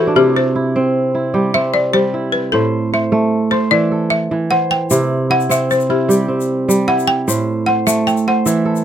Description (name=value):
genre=west african traditional, West African string and xylophone music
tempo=101 BPM (dotted quarters)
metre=12/8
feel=straight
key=C lydian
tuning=A4 = 440 Hz
part: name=balafon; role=melody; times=0.0-8.5 s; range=G4 to G5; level=-16 LUFS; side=left 2 dB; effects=none
part: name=kora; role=arpeggios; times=0.0-8.8 s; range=A2 to E5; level=-15 LUFS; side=right 2 dB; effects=none
part: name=egg shaker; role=percussion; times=4.9-8.8 s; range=none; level=-25 LUFS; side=left 7 dB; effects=none
room=little or no reverb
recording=close, detailed microphones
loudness=-13 LUFS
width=side -9 dB against mid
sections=0.0-8.8 A section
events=kora fill 0.0; balafon solo 0.0-8.8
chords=0.2 C; 2.5 Am; 4.9 C; 7.3 Am